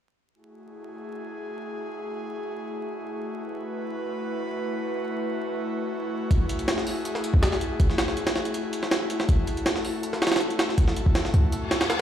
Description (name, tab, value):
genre	drum and bass, jungle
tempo	161 BPM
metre	4/4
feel	straight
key	F# minor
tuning	A4 = 440 Hz
part	airy breathy pad	sustained chords	0.3-12.0 s	A3 to B4	-30 LUFS	left 1 dB	chorus
part	jungle sampler-style drum kit	drums	6.3-12.0 s	hi-hat, kick drum, snare drum	-23 LUFS	equal	overdrive
part	reverse cymbal	sound effects	11.6-12.0 s	none	-30 LUFS	left 3 dB	none
room	moderate lush hall reverb, RT60 1.6 s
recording	played on a big sound system in a bare room, large studio reverb, vinyl crackle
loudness	-24 LUFS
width	side -10 dB against mid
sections	0.3-12.0 A section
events	break 11.5-12.0; reverse cymbal 11.6-12.0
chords	0.3 F#m9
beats	| 0.34 0.72 1.09 1.46 | 1.83 2.21 2.58 2.95 | 3.33 3.70 4.07 4.44 | 4.82 5.19 5.56 5.93 | 6.31 6.68 7.05 7.42 | 7.80 8.17 8.54 8.92 | 9.29 9.66 10.03 10.41 | 10.78 11.15 11.53 11.90